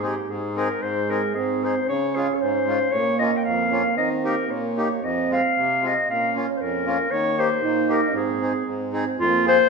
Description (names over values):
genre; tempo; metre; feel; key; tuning
alpine folk, alpine dance band; 114 BPM; 2/4; rubato; Ab major; A4 = 438 Hz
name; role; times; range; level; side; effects
warm clarinet; melody; 0.0-9.7 s; F4 to G5; -22 LUFS; left 2 dB; none
accordion; accompaniment; 0.0-9.6 s; F2 to Ab4; -26 LUFS; left 1 dB; none
warm euphonium; second line; 0.8-9.7 s; Ab3 to Eb4; -25 LUFS; right 7 dB; none
room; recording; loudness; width
wet recital hall reverb, RT60 1.7 s; minimal, uncompressed stereo recording; -20 LUFS; side -4 dB against mid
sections
0.8-9.2 A section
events
none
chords
0.0 Ab; 1.9 Db; 2.9 Bbm; 4.0 Eb; 5.0 Fm; 6.1 Bbm; 7.1 Eb; 8.1 Ab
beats
0.30 | 0.83 1.36 | 1.89 2.41 | 2.92 3.44 | 3.96 4.49 | 5.02 5.55 | 6.07 6.59 | 7.11 7.62 | 8.14 8.66 | 9.19